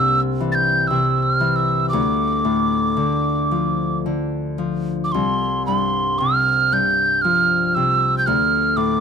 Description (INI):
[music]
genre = celtic folk, Celtic slow air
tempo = 54-60 BPM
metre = 3/4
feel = rubato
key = unclear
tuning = A4 = 440 Hz
[part]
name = mellow hollow tin whistle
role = melody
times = 0.0-9.0 s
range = C6 to A6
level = -18 LUFS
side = right 3 dB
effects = plate reverb
[part]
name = Celtic harp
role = accompaniment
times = 0.0-9.0 s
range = C2 to Bb3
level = -20 LUFS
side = left 3 dB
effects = none
[sound]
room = light reverb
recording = close, detailed microphones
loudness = -17 LUFS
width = side -6 dB against mid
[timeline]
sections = 0.0-5.1 A section; 5.1-9.0 B section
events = none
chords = 0.0 C; 1.9 Dm; 5.1 Csus4; 8.3 Dm